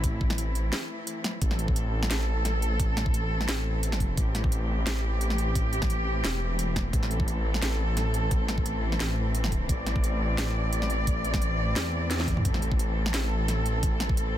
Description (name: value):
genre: half-time drum and bass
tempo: 174 BPM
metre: 4/4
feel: swing 54% on 16ths, half-time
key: A minor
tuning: A4 = 441 Hz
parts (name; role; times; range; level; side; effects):
- rich studio cello section; sustained chords; 0.0-14.4 s; E3 to D5; -32 LUFS; left 1 dB; sidechain pumping
- dark detuned saw bass; bass; 0.0-14.4 s; E1 to E2; -28 LUFS; equal; none
- drum and bass drum kit; drums; 0.0-14.2 s; hi-hat, snare drum, toms; -32 LUFS; equal; soft clipping on snare
- electronic kick drum; drums; 0.0-14.2 s; none; -27 LUFS; equal; none
room: little or no reverb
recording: dense, heavily limited modern master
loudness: -25 LUFS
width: side -12 dB against mid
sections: 0.0-1.4 A section; 1.4-14.4 A section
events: drop 0.0-1.4, 1.4-14.4; break 0.7-1.4; drum fill 12.1-12.5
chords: 0.0 Am